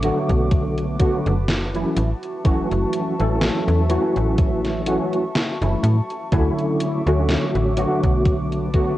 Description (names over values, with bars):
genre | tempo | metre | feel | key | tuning
vaporwave | 62 BPM | 4/4 | swing 55% on 16ths | A major | A4 = 440 Hz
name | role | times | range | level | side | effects
tine electric piano | accompaniment | 0.0-9.0 s | D3 to A4 | -21 LUFS | equal | medium stereo tremolo, ensemble chorus, tape echo
warbly tape-like pad | sustained chords | 0.0-9.0 s | F#4 to D6 | -31 LUFS | left 1 dB | chorus, built-in reverb
slap-like FM bass | bass | 0.0-8.9 s | F#1 to A2 | -22 LUFS | equal | none
gated 80s digital drum machine | drums | 0.0-8.9 s | hi-hat, snare drum | -26 LUFS | equal | gated reverb, gated reverb snare, overdrive, vintage 12-bit sampler grit
electronic kick drum | drums | 0.3-9.0 s | none | -20 LUFS | equal | overdrive, vintage 12-bit sampler grit
room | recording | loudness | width
light reverb | worn, warbling old tape, cassette tape, warbly pitch drift, nothing above 10.7 kHz | -18 LUFS | side -15 dB against mid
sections
0.0-9.0 A section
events
none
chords
0.0 Dmaj9; 0.5 Bm7; 2.0 A6; 6.3 Dmaj9; 8.3 Bm7